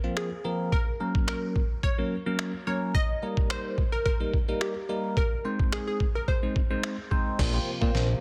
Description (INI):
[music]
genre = dance-pop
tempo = 108 BPM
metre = 4/4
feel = straight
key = Bb minor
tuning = A4 = 439 Hz
[part]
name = glassy wavetable pluck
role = melody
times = 0.0-7.1 s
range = G4 to Eb5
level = -36 LUFS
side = equal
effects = chorus, tape echo
[part]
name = bell-like tine electric piano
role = accompaniment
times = 0.0-8.1 s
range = F3 to C5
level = -34 LUFS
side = equal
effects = phaser, sidechain pumping
[part]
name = trip hop sampler-style drum kit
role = drums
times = 0.2-8.1 s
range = crash cymbal, finger snaps, kick drum, snare drum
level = -30 LUFS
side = equal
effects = soft clipping on snare
[part]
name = soft supersaw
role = sustained chords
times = 7.4-8.2 s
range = C3 to Bb3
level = -40 LUFS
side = equal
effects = none
[part]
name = fat analog bass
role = bass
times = 7.4-8.1 s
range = Bb1 to Bb2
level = -29 LUFS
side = equal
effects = sidechain pumping
[sound]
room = light reverb, digital ambience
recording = dense, heavily limited modern master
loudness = -28 LUFS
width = mono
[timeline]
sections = 0.0-7.4 A section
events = drum fill 7.4-8.2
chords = 0.0 Bbsus2; 0.7 Gb; 2.9 Eb; 5.2 Ab; 7.4 Bbsus2